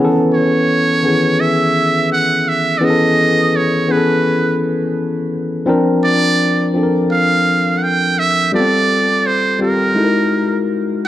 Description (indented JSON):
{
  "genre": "R&B",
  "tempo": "84 BPM",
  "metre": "4/4",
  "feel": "swing 63% on 16ths",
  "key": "unclear",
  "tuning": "A4 = 440 Hz",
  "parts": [
    { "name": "tine electric piano", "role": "accompaniment", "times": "0.0-11.1 s", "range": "D#3 to Bb4", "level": "-15 LUFS", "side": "left 1 dB", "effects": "analog delay" },
    { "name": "trumpet with metal mute", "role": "melody", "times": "0.3-11.1 s", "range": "A#4 to G5", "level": "-16 LUFS", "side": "right 3 dB", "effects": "analog delay" }
  ],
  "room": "moderate spring reverb, RT60 1.5 s, small room ambience",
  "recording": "echo-heavy mix",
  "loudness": "-12 LUFS",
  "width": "side -13 dB against mid",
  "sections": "0.0-11.1 A section",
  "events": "none",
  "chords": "0.0 B9sus4; 5.7 C9sus4; 8.5 G9sus4; 10.0 F#13"
}